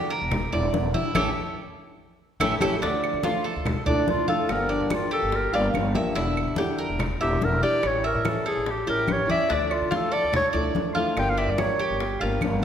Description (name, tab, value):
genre	latin, Cuban son and guajira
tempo	144 BPM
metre	4/4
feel	straight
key	D harmonic minor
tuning	A4 = 440 Hz
part	fingerpicked old ladder-braced acoustic guitar	accompaniment	0.0-12.6 s	D3 to G4	-30 LUFS	left 3 dB	none
part	Cuban tres	arpeggios	0.0-12.6 s	D4 to E5	-28 LUFS	right 3 dB	none
part	congas	percussion	0.1-12.6 s	none	-31 LUFS	left 2 dB	none
part	upright bass	bass	0.2-12.6 s	E1 to D3	-30 LUFS	equal	none
part	bongos	percussion	0.3-12.6 s	none	-35 LUFS	left 4 dB	none
part	claves	percussion	0.3-12.6 s	none	-37 LUFS	right 5 dB	none
part	clear clarinet	melody	3.9-12.0 s	D4 to G5	-26 LUFS	left 1 dB	none
room	wet scoring stage reverb, RT60 1.6 s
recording	recorded in a church or concert hall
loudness	-22 LUFS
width	side -8 dB against mid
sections	0.0-2.8 A section; 2.8-12.6 B section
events	band accent 1.2-2.8; clarinet solo 2.8-12.6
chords	0.0 Em7b5; 1.2 A7; 2.8 Dmadd9; 4.5 Gm7; 6.2 Em7b5; 7.8 A7; 9.5 Dmadd9; 11.2 Gm7